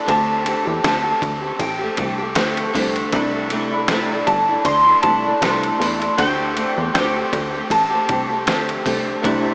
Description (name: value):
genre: indie pop, bedroom pop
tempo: 79 BPM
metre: 4/4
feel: swing 55% on 16ths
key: unclear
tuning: A4 = 440 Hz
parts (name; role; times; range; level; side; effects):
- electric guitar through a small old amp; melody; 0.0-8.4 s; G5 to C6; -22 LUFS; equal; analog chorus, diffuse ambient delay
- flamenco guitar; accompaniment; 0.0-9.5 s; C3 to G4; -24 LUFS; equal; lush chorus, warbly pitch drift
- plucky analog bass; bass; 0.1-9.5 s; G1 to E2; -30 LUFS; equal; none
- dusty soul sampler-style drum kit; drums; 0.1-9.4 s; hi-hat, kick drum, ride cymbal, snare drum; -27 LUFS; equal; overdrive
- mellow tonewheel organ; accompaniment; 9.2-9.5 s; A3 to C5; -23 LUFS; equal; chorus vibrato
room: wet huge ambient reverb, RT60 7.7 s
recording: dreamy mix soaked in reverb, small speaker sound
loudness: -19 LUFS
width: mono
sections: 0.0-9.5 A section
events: none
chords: 0.1 D7sus4; 3.1 C69; 6.2 D7sus4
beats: | 0.07 0.83 1.60 2.36 | 3.12 3.89 4.65 5.41 | 6.18 6.94 7.70 8.47 | 9.23